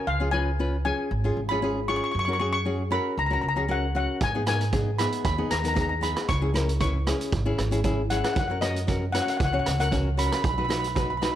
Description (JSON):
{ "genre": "calypso", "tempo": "116 BPM", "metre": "4/4", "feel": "swing 53% on 16ths", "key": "unclear", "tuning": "A4 = 439 Hz", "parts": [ { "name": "steel pan", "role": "melody", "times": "0.0-11.4 s", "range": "D#5 to C#6", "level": "-28 LUFS", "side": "left 1 dB", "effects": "none" }, { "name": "nylon-string guitar", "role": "accompaniment", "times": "0.0-11.4 s", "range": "B3 to C#5", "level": "-29 LUFS", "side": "left 2 dB", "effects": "none" }, { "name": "upright bass", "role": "bass", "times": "0.1-11.3 s", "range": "G#1 to G#2", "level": "-28 LUFS", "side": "right 1 dB", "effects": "none" }, { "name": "street-band drum kit", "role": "drums", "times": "4.2-11.4 s", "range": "hi-hat, kick drum, rim click", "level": "-29 LUFS", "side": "right 3 dB", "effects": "none" } ], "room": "little or no reverb", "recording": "close, detailed microphones", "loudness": "-23 LUFS", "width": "side -11 dB against mid", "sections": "0.0-11.4 A section", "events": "none", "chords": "0.1 C#7; 2.1 F#; 4.2 G#m; 6.3 C#m; 8.4 F#; 10.4 B", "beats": "| 0.07 0.59 1.11 1.62 | 2.14 2.66 3.18 3.70 | 4.21 4.73 5.25 5.77 | 6.29 6.80 7.32 7.84 | 8.36 8.88 9.40 9.92 | 10.44 10.96" }